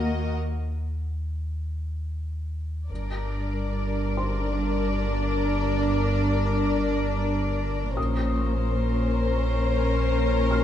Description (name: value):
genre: cinematic, suspense film score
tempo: free time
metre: none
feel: none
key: G minor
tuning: A4 = 439 Hz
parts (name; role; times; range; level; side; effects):
- clear studio violin section; melody; 0.0-10.6 s; C5 to Eb5; -33 LUFS; left 5 dB; none
- dark studio violin section; second line; 0.0-10.6 s; Gb4 to Bb4; -32 LUFS; left 4 dB; none
- dark studio cello section; bass; 0.0-10.6 s; G2 to Bb3; -30 LUFS; right 1 dB; none
- warm studio double bass section; bass; 0.0-10.6 s; G1 to Eb2; -33 LUFS; right 3 dB; none
- pure sine sub bass; drone; 0.0-10.6 s; G1 to Eb2; -28 LUFS; equal; none
- felt-muted upright piano; texture; 0.0-10.6 s; C5 to F6; -38 LUFS; left 1 dB; none
- dark studio viola section; accompaniment; 2.9-10.6 s; Db4 to D4; -29 LUFS; left 1 dB; none
room: moderate scoring stage reverb, RT60 1.5 s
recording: dark, warm production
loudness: -24 LUFS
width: side -10 dB against mid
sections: 0.0-2.9 A section; 2.9-10.6 A section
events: break 0.4-2.9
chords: 0.0 Eb5; 2.9 Gm; 8.0 Bbmadd9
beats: free time